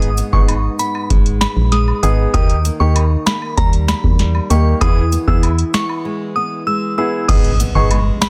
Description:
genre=dancehall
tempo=97 BPM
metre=4/4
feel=straight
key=G# harmonic minor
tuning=A4 = 439 Hz
part: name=warm grand piano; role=accompaniment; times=0.0-8.0 s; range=A#3 to G#4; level=-25 LUFS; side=equal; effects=none
part: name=flamenco guitar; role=arpeggios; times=0.0-8.3 s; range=G#2 to E4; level=-26 LUFS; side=equal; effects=none
part: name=organ-like FM bass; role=bass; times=0.0-8.1 s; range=G1 to E2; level=-18 LUFS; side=equal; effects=none
part: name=booming analog drum machine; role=drums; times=0.0-8.3 s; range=crash cymbal, finger snaps, hi-hat, kick drum, snare drum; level=-18 LUFS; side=equal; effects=soft clipping on snare
part: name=cabasa and woodblock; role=percussion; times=0.2-8.3 s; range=none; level=-31 LUFS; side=equal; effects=none
part: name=glassy synth bell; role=melody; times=0.3-8.3 s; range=A#5 to E6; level=-24 LUFS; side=equal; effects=chorus, tremolo, delay
part: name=impact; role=sound effects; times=7.4-8.3 s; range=none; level=-25 LUFS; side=equal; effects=none
room=digital ambience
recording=dense, heavily limited modern master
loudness=-15 LUFS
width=mono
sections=0.0-7.3 A section; 7.3-8.3 B section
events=break 6.1-7.3; impact 7.3-8.3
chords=0.0 G#m; 2.3 D#; 4.8 E; 7.3 G#m

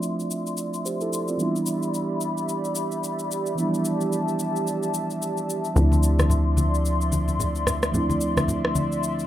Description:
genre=amapiano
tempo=110 BPM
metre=4/4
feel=swing 58% on 16ths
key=D dorian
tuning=A4 = 439 Hz
part: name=mellow tine electric piano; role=accompaniment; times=0.0-9.3 s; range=E3 to C5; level=-26 LUFS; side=right 2 dB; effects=low-pass filter
part: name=airy breathy pad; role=sustained chords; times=0.0-9.3 s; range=F3 to C6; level=-29 LUFS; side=left 1 dB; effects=chorus, low-pass filter
part: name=electronic shaker and rim click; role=drums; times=0.0-9.3 s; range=none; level=-29 LUFS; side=left 1 dB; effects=none
part: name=plucky analog bass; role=bass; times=5.8-9.3 s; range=D2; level=-23 LUFS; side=left 1 dB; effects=none
part: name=congas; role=percussion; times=5.8-8.9 s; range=none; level=-28 LUFS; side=left 2 dB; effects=none
room=moderate studio reverb, RT60 0.5 s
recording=rough home demo mix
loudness=-22 LUFS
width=side -12 dB against mid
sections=0.0-9.3 A section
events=filter sweep 0.0-9.3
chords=0.0 Dm9; 1.4 Em7; 5.8 Dm9

